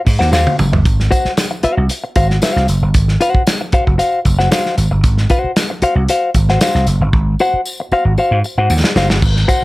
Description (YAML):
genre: funk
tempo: 115 BPM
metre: 4/4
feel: straight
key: Ab mixolydian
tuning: A4 = 440 Hz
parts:
  - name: clean electric guitar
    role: accompaniment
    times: 0.1-9.6 s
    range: Gb4 to Gb5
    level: -16 LUFS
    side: left 2 dB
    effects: plate reverb
  - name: vintage slap bass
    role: bass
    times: 0.1-9.4 s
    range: Gb1 to Ab2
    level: -14 LUFS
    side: equal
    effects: none
  - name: warm soul drum kit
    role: drums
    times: 0.1-9.6 s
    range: crash cymbal, hi-hat, kick drum, snare drum, toms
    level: -15 LUFS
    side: equal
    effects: none
  - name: tambourine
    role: percussion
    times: 0.1-9.6 s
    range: none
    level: -29 LUFS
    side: left 2 dB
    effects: none
room: light reverb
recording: none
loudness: -12 LUFS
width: side -20 dB against mid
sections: 0.0-9.2 A section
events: drum fill 0.3-0.9, 7.1-9.2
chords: 0.0 Ab6